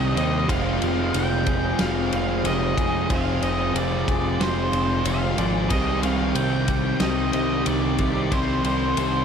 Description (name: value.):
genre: rock, shoegaze and dream pop.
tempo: 92 BPM.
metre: 4/4.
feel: straight.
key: unclear.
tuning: A4 = 440 Hz.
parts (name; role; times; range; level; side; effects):
octave-fuzz lead guitar; melody; 0.0-9.2 s; C5 to G5; -28 LUFS; right 1 dB; distortion, diffuse ambient delay.
electric guitar through a small old amp; arpeggios; 0.0-9.2 s; G3 to Ab4; -31 LUFS; left 1 dB; ensemble chorus, diffuse ambient delay.
crunchy overdriven guitar; riff; 0.0-9.2 s; C3 to G4; -26 LUFS; right 7 dB; reverse reverb.
thick fuzz guitar; riff; 0.0-9.2 s; F2 to C4; -27 LUFS; left 9 dB; distortion, analog chorus.
growling picked electric bass; bass; 0.0-9.2 s; F1 to Eb2; -26 LUFS; equal; overdrive.
loose indie drum kit; drums; 0.2-9.1 s; kick drum, ride cymbal, snare drum; -29 LUFS; equal; none.
room: moderate huge ambient reverb, RT60 4.8 s.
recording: dreamy mix soaked in reverb.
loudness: -20 LUFS.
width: side -7 dB against mid.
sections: 0.0-9.2 A section.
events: none.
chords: 0.5 Fm7; 5.7 Cm.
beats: | 0.49 1.14 1.79 2.44 | 3.10 3.75 4.40 5.05 | 5.71 6.36 7.01 7.67 | 8.32 8.97.